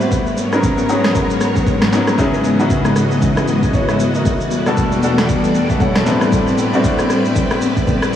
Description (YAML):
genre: amapiano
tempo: 116 BPM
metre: 4/4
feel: swing 58% on 16ths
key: unclear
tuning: A4 = 440 Hz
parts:
  - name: bright concert grand piano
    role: accompaniment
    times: 0.0-8.2 s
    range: E2 to F#5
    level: -18 LUFS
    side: equal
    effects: none
  - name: string machine, violins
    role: sustained chords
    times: 0.0-8.2 s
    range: C#2 to D#5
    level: -18 LUFS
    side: equal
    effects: ensemble chorus, sidechain pumping
  - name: deep house drum kit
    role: drums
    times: 0.0-8.2 s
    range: kick drum, rim click, shaker, snare drum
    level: -19 LUFS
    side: equal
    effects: none
  - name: congas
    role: percussion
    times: 0.0-8.2 s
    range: none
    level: -23 LUFS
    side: left 4 dB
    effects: none
room: wet huge ambient reverb, RT60 7.1 s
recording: dreamy mix soaked in reverb, small room ambience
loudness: -13 LUFS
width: side -10 dB against mid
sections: 0.0-8.2 A section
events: none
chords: 0.1 G#m11; 2.2 C#m11; 4.3 Em11; 6.1 Am11